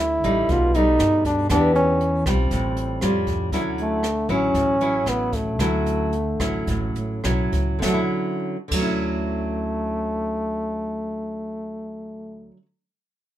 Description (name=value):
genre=bossa nova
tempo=101-119 BPM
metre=4/4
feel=straight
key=D major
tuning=A4 = 439 Hz
part: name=warm trombone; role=melody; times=0.0-12.5 s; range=A3 to F4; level=-23 LUFS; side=equal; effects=none
part: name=nylon-string guitar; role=accompaniment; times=0.0-12.7 s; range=A2 to G4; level=-25 LUFS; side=equal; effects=none
part: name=upright bass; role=bass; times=0.0-12.5 s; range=A1 to G2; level=-27 LUFS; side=equal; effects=none
part: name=jazz brush drum kit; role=drums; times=0.2-8.9 s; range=crash cymbal, hi-hat, kick drum, rim click, snare drum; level=-30 LUFS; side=right 1 dB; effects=none
room=light reverb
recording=minimal, uncompressed stereo recording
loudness=-20 LUFS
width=side -12 dB against mid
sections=0.0-7.8 A section; 7.8-12.6 B section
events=slowing down 3.5-7.8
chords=0.5 Baug7; 1.5 Em7; 2.5 A7alt; 3.5 Dmaj9